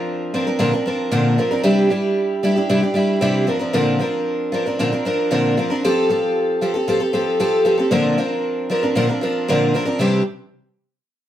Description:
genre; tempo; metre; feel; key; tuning
rock; 115 BPM; 4/4; straight; unclear; A4 = 440 Hz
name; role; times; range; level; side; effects
picked twelve-string acoustic guitar; solo; 0.0-10.2 s; Bb2 to Bb4; -16 LUFS; equal; none
room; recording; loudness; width
moderate studio reverb, RT60 0.7 s; band playing live in one room; -16 LUFS; side -11 dB against mid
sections
0.0-10.0 A section; 10.0-11.3 B section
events
none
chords
0.0 Bbadd9; 1.6 Cadd9; 3.5 Bbadd9; 5.8 Fadd9; 7.9 Bbadd9; 10.0 Cadd9

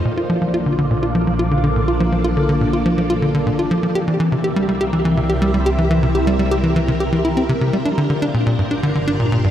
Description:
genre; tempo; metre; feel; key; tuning
ambient, sequencer-driven space music; 123 BPM; 4/4; straight; unclear; A4 = 440 Hz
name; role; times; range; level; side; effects
string machine, full ensemble; sustained chords; 0.0-9.5 s; Bb3 to F5; -22 LUFS; equal; phaser, ensemble chorus, shimmer reverb
tight sequencer bass; riff; 0.0-9.5 s; G2 to G4; -17 LUFS; equal; analog delay
analog drone; bass; 0.6-9.5 s; G1 to C2; -24 LUFS; equal; chorus
room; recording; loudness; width
moderate huge ambient reverb, RT60 8.5 s; none; -15 LUFS; side -10 dB against mid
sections
0.1-9.5 A section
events
none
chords
0.1 Bbmaj7; 4.0 C7; 7.9 Gm7

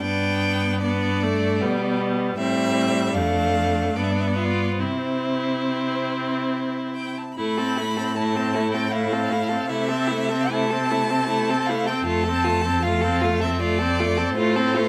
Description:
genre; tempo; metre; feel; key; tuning
classical, slow romantic movement for string quartet; 69-81 BPM; 3/4; rubato; C major, A minor from 7.4 s; A4 = 440 Hz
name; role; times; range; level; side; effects
rich violin; melody; 0.0-14.9 s; C5 to B5; -30 LUFS; equal; none
rich violin; second line; 0.0-14.9 s; B3 to A4; -29 LUFS; equal; none
clear viola; accompaniment; 0.0-14.9 s; G3 to C4; -27 LUFS; equal; none
rich cello; bass; 0.0-14.9 s; F2 to C3; -29 LUFS; equal; none
room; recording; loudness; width
light reverb; none; -23 LUFS; mono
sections
0.0-7.4 A section; 7.4-14.9 B section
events
none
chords
0.0 G; 2.4 Am7; 3.2 Dm/F; 4.0 G; 4.8 C; 7.4 Am; 9.7 Am/C; 12.1 F; 14.3 F/A

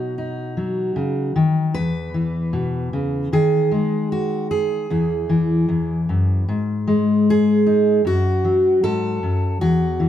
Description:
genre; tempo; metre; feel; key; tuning
folk, solo fingerstyle acoustic guitar; 76 BPM; 4/4; straight; E major; A4 = 445 Hz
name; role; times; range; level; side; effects
fingerpicked steel-string acoustic guitar; solo; 0.0-10.1 s; E2 to B4; -17 LUFS; left 1 dB; none
room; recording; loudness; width
light reverb; none; -17 LUFS; side -10 dB against mid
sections
0.0-10.1 A section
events
none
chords
0.0 B; 1.8 E5; 3.3 G#5/D#; 4.9 Eadd9; 6.5 G#5; 8.0 F#m

